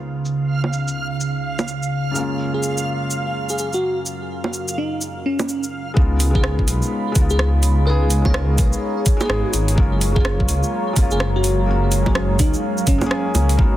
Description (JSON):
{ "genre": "future garage", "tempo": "126 BPM", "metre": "4/4", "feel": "swing 62% on 16ths", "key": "unclear", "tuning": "A4 = 440 Hz", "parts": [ { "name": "felt-muted upright piano", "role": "accompaniment", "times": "0.0-13.8 s", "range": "F#2 to A#4", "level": "-26 LUFS", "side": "left 3 dB", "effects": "sidechain pumping, analog delay" }, { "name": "deep dark ambient pad", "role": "sustained chords", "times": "0.0-13.8 s", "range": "C#3 to B5", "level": "-26 LUFS", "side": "right 1 dB", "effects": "chorus, built-in reverb, vintage 12-bit sampler grit, sidechain pumping" }, { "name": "backwards swelling texture", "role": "texture", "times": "0.0-6.0 s", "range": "E#5", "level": "-30 LUFS", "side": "right 3 dB", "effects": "built-in reverb" }, { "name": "garage drum kit", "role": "drums", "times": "0.3-13.6 s", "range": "bongos, hi-hat, rim click, shaker", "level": "-25 LUFS", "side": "right 2 dB", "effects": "overdrive, low-pass filter on perc, low-pass filter on snare, low-pass filter on hats" }, { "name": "bell-like FM electric piano", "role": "melody", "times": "2.5-13.3 s", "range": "C#4 to C#5", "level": "-26 LUFS", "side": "right 1 dB", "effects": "chorus, phaser, cassette tape, tape echo" }, { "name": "dark detuned saw bass", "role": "bass", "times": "6.0-13.8 s", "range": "F#1 to C#2", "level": "-19 LUFS", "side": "equal", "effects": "sidechain pumping" }, { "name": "electronic kick drum", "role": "drums", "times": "6.0-13.7 s", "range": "none", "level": "-17 LUFS", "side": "equal", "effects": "overdrive" } ], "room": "digital ambience", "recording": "dense, heavily limited modern master", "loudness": "-17 LUFS", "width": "side -14 dB against mid", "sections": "0.0-6.0 A section; 6.0-13.8 B section", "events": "filter sweep on ambient pad 0.0-6.0", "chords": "0.0 C#7; 2.2 F#maj7; 6.0 C#7; 9.8 F#maj7" }